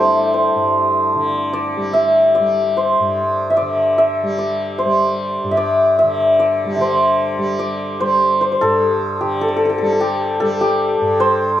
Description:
indian classical, Hindustani; 149 BPM; 4/4; straight; G raga durga; A4 = 441 Hz
santur; melody; 0.0-11.6 s; A3 to C6; -15 LUFS; equal
tanpura; drone; 0.0-11.6 s; G2 to G3; -24 LUFS; equal
moderate scoring stage reverb, RT60 1.5 s; -14 LUFS; side -12 dB against mid
0.0-6.8 A section; 6.8-11.6 B section
| 0.31 0.71 1.12 1.53 | 1.94 2.34 2.75 3.15 | 3.56 3.96 4.37 4.77 | 5.18 5.58 5.98 6.39 | 6.79 7.19 7.59 7.99 | 8.39 8.79 9.20 9.60 | 9.99 10.39 10.79 11.19 | 11.59

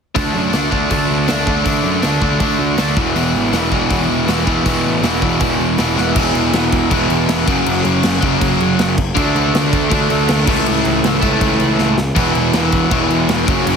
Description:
punk rock; 160 BPM; 4/4; straight; A4 = 435 Hz
biting overdriven guitar; riff; 0.1-13.8 s; E2 to D4; -18 LUFS; left 14 dB
distorted electric guitar; riff; 0.2-13.8 s; E2 to D4; -18 LUFS; right 13 dB; distortion
fuzz picked electric bass; bass; 0.2-13.8 s; E1 to F#2; -20 LUFS; equal; overdrive
big rock drum kit; drums; 0.2-13.8 s; crash cymbal, hi-hat, kick drum, snare drum; -20 LUFS; equal
light reverb; heavily compressed radio sound, multiband compression; -13 LUFS; side -6 dB against mid
0.2-6.2 A section; 6.2-13.8 B section
drum fill 6.0, 11.8-12.2
0.2 D5; 3.0 E5; 7.5 F#5; 9.2 D5; 10.5 A/C#; 12.2 E5
| 0.15 0.53 0.90 1.28 | 1.65 2.03 2.40 2.78 | 3.16 3.53 3.91 4.28 | 4.66 5.03 5.41 5.79 | 6.16 6.54 6.91 7.29 | 7.66 8.04 8.41 8.78 | 9.16 9.53 9.91 10.28 | 10.66 11.03 11.41 11.79 | 12.16 12.54 12.91 13.29 | 13.66

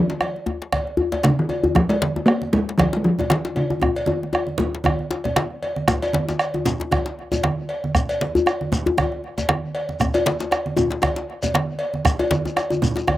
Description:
west african traditional, West African drum ensemble; 117 BPM; 4/4; swing 56% on 16ths; Db major pentatonic; A4 = 436 Hz
talking drum; melody; 0.0-5.4 s; Db3 to Bb3; -19 LUFS; equal
djembe; percussion; 0.1-13.2 s; -24 LUFS; left 3 dB; slapback echo
bombo; percussion; 0.2-13.2 s; -23 LUFS; right 2 dB; slapback echo
cowbell; percussion; 0.2-13.2 s; -28 LUFS; equal; slapback echo
djembe; percussion; 0.4-13.2 s; -27 LUFS; left 3 dB
congas; percussion; 0.7-13.2 s; -26 LUFS; right 3 dB
shekere; percussion; 5.9-13.0 s; -32 LUFS; left 1 dB
little or no reverb; recorded outdoors, with no room sound; -19 LUFS; side -14 dB against mid
0.0-5.9 A section; 5.9-13.2 B section
drum fill 3.8-5.9
0.21 0.73 1.25 | 1.76 2.28 2.79 3.31 | 3.82 4.34 4.85 5.37 | 5.88 6.40 6.91 7.43 | 7.94 8.46 8.97 9.48 | 10.00 10.51 11.03 11.54 | 12.05 12.57 13.08

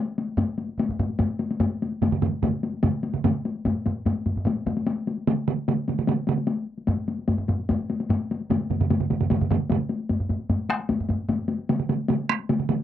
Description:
japanese traditional, taiko drum ensemble; 148 BPM; 4/4; straight
solo taiko drums; percussion; 0.1-12.8 s; -25 LUFS; left 4 dB
taiko ensemble; percussion; 0.4-11.4 s; -27 LUFS; equal
solo taiko drums; percussion; 2.0-12.8 s; -26 LUFS; right 8 dB
moderate booth ambience, RT60 0.2 s; dry, close 1970s-style studio recording, faint mains hum; -23 LUFS; side -11 dB against mid
0.0-10.1 A section; 10.1-12.8 B section
speeding up 0.0-12.8
| 0.37 0.78 1.19 1.60 | 2.01 2.42 2.83 3.24 | 3.65 4.06 4.46 4.87 | 5.27 5.68 6.08 6.49 | 6.89 7.30 7.70 8.10 | 8.50 8.90 9.30 9.71 | 10.11 10.51 10.90 11.30 | 11.70 12.10 12.49

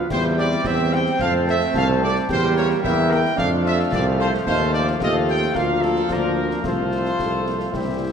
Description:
military-style march for wind band; 110 BPM; 2/4; straight; F major; A4 = 440 Hz
mellow euphonium; second line; 0.0-8.1 s; A3 to G4; -26 LUFS; right 3 dB
warm woodwind section; second line; 0.0-8.1 s; G4 to A5; -28 LUFS; left 3 dB
warm trombone section; sustained chords; 0.0-8.1 s; E3 to C4; -29 LUFS; right 1 dB
dark trumpet section; melody; 0.1-8.1 s; A4 to G5; -25 LUFS; right 1 dB
mellow tuba; bass; 0.1-8.1 s; C2 to F2; -23 LUFS; right 2 dB
concert snare drum, clash cymbals and concert bass drum; drums; 0.1-8.1 s; -32 LUFS; left 1 dB
mellow French horn section; accompaniment; 0.4-8.1 s; F3 to Bb4; -27 LUFS; left 5 dB
wet scoring stage reverb, RT60 1.9 s; -18 LUFS; side -7 dB against mid
0.0-8.1 A section
0.1 C/E; 1.2 F; 2.3 Edim; 3.4 F; 4.5 F7/Eb; 5.6 Bb/D; 6.6 F/C
| 0.10 0.65 | 1.19 1.74 | 2.28 2.83 | 3.37 3.92 | 4.46 5.01 | 5.55 6.10 | 6.64 7.19 | 7.73

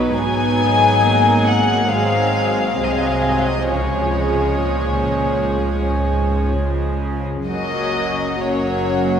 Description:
classical, slow romantic movement for string orchestra; 58-71 BPM; 4/4; rubato; A4 = 439 Hz
warm chamber violin section; melody; 0.0-9.2 s; B4 to G#5; -21 LUFS; left 4 dB
warm symphonic violin section; second line; 0.0-9.2 s; B#3 to G#4; -22 LUFS; left 2 dB
rich symphonic viola section; accompaniment; 0.0-9.2 s; E#3 to B3; -22 LUFS; right 2 dB
warm symphonic cello section; bass; 0.0-9.2 s; F#2 to C#3; -26 LUFS; right 2 dB
warm symphonic double bass section; bass; 0.0-9.2 s; F#1 to C#2; -23 LUFS; right 1 dB
wet cathedral reverb, RT60 4.9 s; recorded in a church or concert hall; -16 LUFS; side -8 dB against mid
0.0-9.2 A section
0.2 G#m7; 1.9 G#7; 3.7 C#; 7.5 F#
| 0.18 1.04 1.91 2.80 | 3.71 4.64 5.60 6.54 | 7.48 8.41

